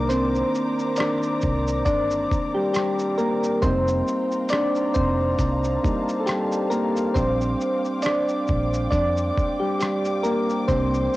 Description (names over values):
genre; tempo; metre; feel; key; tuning
lo-fi hip hop; 68 BPM; 4/4; swing 57% on 16ths; Bb major; A4 = 439 Hz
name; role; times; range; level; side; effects
soft electric-piano-like synth keys; accompaniment; 0.0-11.2 s; Eb3 to D5; -22 LUFS; equal; chorus, cassette tape
dark studio string section; sustained chords; 0.0-11.2 s; Bb3 to D6; -34 LUFS; left 2 dB; cassette tape
vintage muted fingered electric bass; bass; 0.0-11.1 s; F1 to F2; -26 LUFS; equal; none
lo-fi sampler-style drum kit; drums; 0.1-11.2 s; hi-hat, kick drum, rim click, shaker; -27 LUFS; equal; overdrive, vintage 12-bit sampler grit, cassette tape
room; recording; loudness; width
digital ambience; home recording on cassette; -20 LUFS; side -17 dB against mid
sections
0.0-11.2 A section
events
synth keys solo 0.0-11.2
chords
0.0 Cm9; 3.6 F9sus4; 7.2 Bb6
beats
| 0.10 0.98 1.86 2.75 | 3.63 4.51 5.39 6.28 | 7.16 8.04 8.92 9.80 | 10.69